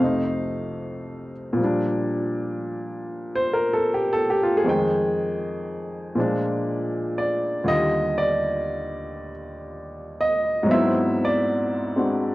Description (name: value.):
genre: solo jazz.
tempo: 79 BPM.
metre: 4/4.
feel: swing 68% on 8ths, rubato.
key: unclear.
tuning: A4 = 440 Hz.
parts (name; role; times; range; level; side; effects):
warm baby grand piano; solo; 0.0-12.3 s; Eb2 to G5; -22 LUFS; equal; cassette tape.
room: wet booth ambience, RT60 0.2 s.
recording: home recording on cassette.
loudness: -21 LUFS.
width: side -18 dB against mid.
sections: 0.0-1.6 A section; 1.6-12.3 B section.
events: grand piano solo 1.6-12.3.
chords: 0.0 F7; 1.6 Bb6; 4.7 Fm9; 6.2 Bb7; 7.7 Ebmaj9; 10.7 Ab7alt.